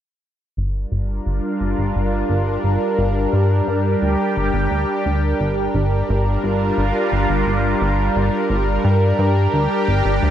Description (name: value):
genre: synthwave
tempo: 87 BPM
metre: 4/4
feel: straight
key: G minor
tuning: A4 = 440 Hz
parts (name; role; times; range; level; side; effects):
- lush unison pad; sustained chords; 1.0-10.3 s; G3 to Bb4; -19 LUFS; equal; chorus, phaser
- chorused synth bass; bass; 0.6-10.3 s; G1 to G2; -19 LUFS; equal; none
room: moderate plate reverb, RT60 3.3 s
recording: bright 1980s-style digital production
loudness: -16 LUFS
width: side -10 dB against mid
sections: 0.6-6.1 A section; 6.1-10.3 B section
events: filter sweep on analog synth bass 0.6-6.1; filter sweep on analog synth pad 0.6-6.1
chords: 0.6 Gm7